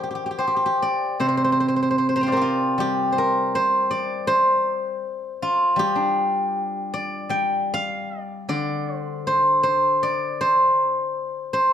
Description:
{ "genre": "chinese traditional, Chinese solo plucked strings", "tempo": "73-82 BPM", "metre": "2/4", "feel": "rubato", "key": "G yu mode", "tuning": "A4 = 441 Hz", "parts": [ { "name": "steel-string zither", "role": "solo", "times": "0.0-11.7 s", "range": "C3 to Bb5", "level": "-19 LUFS", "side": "equal", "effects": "none" } ], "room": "moderate recital hall reverb, RT60 1.4 s", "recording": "dark, warm production", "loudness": "-19 LUFS", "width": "side -9 dB against mid", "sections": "0.0-1.2 A section; 1.2-11.7 B section", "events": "none", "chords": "none", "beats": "0.41 | 1.22 2.01 | 2.79 3.54 | 4.27 5.02 | 5.77 6.53 | 7.31 8.11 | 8.88 9.64 | 10.39 11.15" }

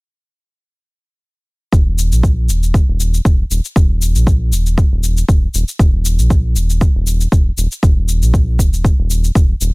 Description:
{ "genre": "afro house", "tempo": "118 BPM", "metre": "4/4", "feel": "swing 54% on 16ths", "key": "unclear", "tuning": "A4 = 443 Hz", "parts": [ { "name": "round analog bass", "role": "bass", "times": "1.7-9.7 s", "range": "Eb1 to Bb1", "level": "-15 LUFS", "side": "equal", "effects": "sidechain pumping" }, { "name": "cabasa", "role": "drums", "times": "1.7-9.7 s", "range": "none", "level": "-24 LUFS", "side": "left 3 dB", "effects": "none" }, { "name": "electronic kick drum", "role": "drums", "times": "1.7-9.5 s", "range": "none", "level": "-12 LUFS", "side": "equal", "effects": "none" } ], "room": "little or no reverb", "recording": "none", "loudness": "-12 LUFS", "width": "side -31 dB against mid", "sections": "1.7-9.7 A section", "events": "none", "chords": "none", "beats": "| 1.73 2.23 2.74 3.25 | 3.76 4.27 4.78 5.29 | 5.79 6.30 6.81 7.32 | 7.83 8.34 8.84 9.35" }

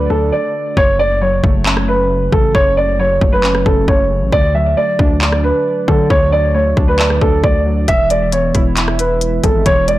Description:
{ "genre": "hip hop, trap", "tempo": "135 BPM", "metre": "4/4", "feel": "half-time", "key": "F# minor", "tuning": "A4 = 439 Hz", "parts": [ { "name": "dark grand piano", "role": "melody", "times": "0.0-10.0 s", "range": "A4 to E5", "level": "-15 LUFS", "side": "right 1 dB", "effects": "low-pass filter, tape echo" }, { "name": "warbly lo-fi synth keys", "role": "accompaniment", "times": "0.0-10.0 s", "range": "F#2 to E5", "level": "-20 LUFS", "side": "right 1 dB", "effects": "chorus, low-pass filter" }, { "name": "distorted 808-style bass", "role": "bass", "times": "0.0-10.0 s", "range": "E1 to D3", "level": "-18 LUFS", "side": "left 1 dB", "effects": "distortion" }, { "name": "trap drum kit", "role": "drums", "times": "0.8-10.0 s", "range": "handclaps, hi-hat, kick drum, rim click", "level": "-15 LUFS", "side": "left 1 dB", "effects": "none" } ], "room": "light reverb", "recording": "blown-out, overdriven recording, overdrive", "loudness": "-11 LUFS", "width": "side -15 dB against mid", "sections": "0.8-10.0 A section", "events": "stop 0.3-0.8; hi-hats muted 0.8-7.9", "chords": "0.0 D; 0.8 F#m; 4.3 D; 7.9 E", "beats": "0.33 | 0.77 1.21 1.66 2.10 | 2.55 2.99 3.44 3.88 | 4.33 4.77 5.21 5.66 | 6.10 6.55 6.99 7.44 | 7.88 8.32 8.77 9.21 | 9.66" }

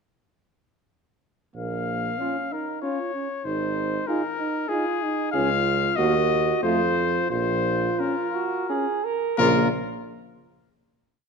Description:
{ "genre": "classical, brass quintet", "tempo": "85-98 BPM", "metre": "3/4", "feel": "rubato", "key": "Bb minor", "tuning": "A4 = 439 Hz", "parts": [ { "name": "clear trumpet", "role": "melody", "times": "1.6-9.7 s", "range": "Ab4 to F5", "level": "-26 LUFS", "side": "left 8 dB", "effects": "none" }, { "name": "mellow trombone", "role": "accompaniment", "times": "1.6-9.7 s", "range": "Db3 to Gb4", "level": "-28 LUFS", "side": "right 6 dB", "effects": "none" }, { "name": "clear tuba", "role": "bass", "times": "1.6-9.7 s", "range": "Ab1 to F2", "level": "-28 LUFS", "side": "right 3 dB", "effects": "none" }, { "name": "clear flugelhorn", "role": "second line", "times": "2.2-9.7 s", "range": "F4 to Bb4", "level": "-30 LUFS", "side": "right 8 dB", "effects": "none" }, { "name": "mellow French horn", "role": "accompaniment", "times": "2.2-9.7 s", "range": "A3 to Eb4", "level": "-29 LUFS", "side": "left 5 dB", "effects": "none" } ], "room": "moderate recital hall reverb, RT60 1.4 s", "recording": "dark, warm production", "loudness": "-22 LUFS", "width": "side -5 dB against mid", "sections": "1.6-9.4 A section; 9.4-11.3 final chord", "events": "slowing down 4.4-9.4", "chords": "1.6 Bbm; 3.5 Ab; 5.3 Db; 6.0 Ebm; 6.6 F; 7.3 Bbm", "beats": "| 1.56 2.20 2.83 | 3.46 4.08 4.70 | 5.34 5.98 6.64 | 7.31 8.00 8.70 | 9.39" }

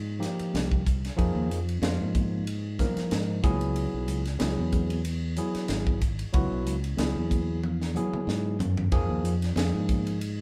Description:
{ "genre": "electric jazz fusion", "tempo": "93 BPM", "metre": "4/4", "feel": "swing 54% on 16ths", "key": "unclear", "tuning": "A4 = 440 Hz", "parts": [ { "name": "modern bright fingered electric bass", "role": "bass", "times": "0.0-10.4 s", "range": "Ab1 to Ab2", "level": "-32 LUFS", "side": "equal", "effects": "none" }, { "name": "overdriven tine electric piano", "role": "accompaniment", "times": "0.2-10.2 s", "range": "F3 to Bb4", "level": "-33 LUFS", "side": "equal", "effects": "none" }, { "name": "crisp fusion drum kit", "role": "drums", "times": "0.2-10.4 s", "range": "hi-hat, kick drum, ride cymbal, snare drum, toms", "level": "-33 LUFS", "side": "equal", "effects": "none" }, { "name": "congas", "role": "percussion", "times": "0.2-10.3 s", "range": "none", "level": "-40 LUFS", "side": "equal", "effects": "none" } ], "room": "moderate stone room reverb, RT60 1.0 s", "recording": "band playing live in one room", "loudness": "-28 LUFS", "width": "mono", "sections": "0.0-10.4 A section", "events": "drum fill 7.6-8.9", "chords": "0.0 Fm9; 3.4 Dbm7; 8.9 Fm7", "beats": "0.54 | 1.19 1.83 2.47 3.12 | 3.76 4.41 5.05 5.70 | 6.34 6.99 7.63 8.27 | 8.92 9.56 10.21" }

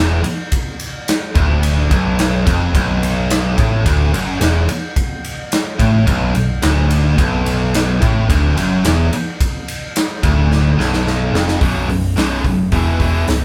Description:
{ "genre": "hard rock", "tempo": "108 BPM", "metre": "4/4", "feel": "straight", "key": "B minor", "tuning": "A4 = 440 Hz", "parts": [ { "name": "cranked stack guitar", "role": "riff", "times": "0.0-13.4 s", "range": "B1 to E3", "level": "-23 LUFS", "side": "equal", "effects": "overdrive" }, { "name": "heavy high-gain guitar", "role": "riff", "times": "0.0-13.4 s", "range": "B1 to E3", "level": "-21 LUFS", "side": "equal", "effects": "distortion" }, { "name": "hollow-body short-scale picked electric bass", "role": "bass", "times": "0.0-13.4 s", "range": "B0 to A1", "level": "-20 LUFS", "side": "equal", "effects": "none" }, { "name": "big rock drum kit", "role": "drums", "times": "0.2-13.4 s", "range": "hi-hat, kick drum, ride cymbal, snare drum", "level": "-21 LUFS", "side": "equal", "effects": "none" } ], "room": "light reverb", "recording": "band playing live in one room", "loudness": "-16 LUFS", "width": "mono", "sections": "0.0-11.6 A section; 11.6-13.4 B section", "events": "drum fill 10.5-11.6", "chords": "0.0 Bm; 11.6 B5; 12.7 E5", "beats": "| 0.52 1.07 1.63 2.18 | 2.74 3.30 3.85 4.41 | 4.96 5.52 6.07 6.63 | 7.18 7.74 8.29 8.84 | 9.40 9.95 10.51 11.06 | 11.61 12.17 12.72 13.28" }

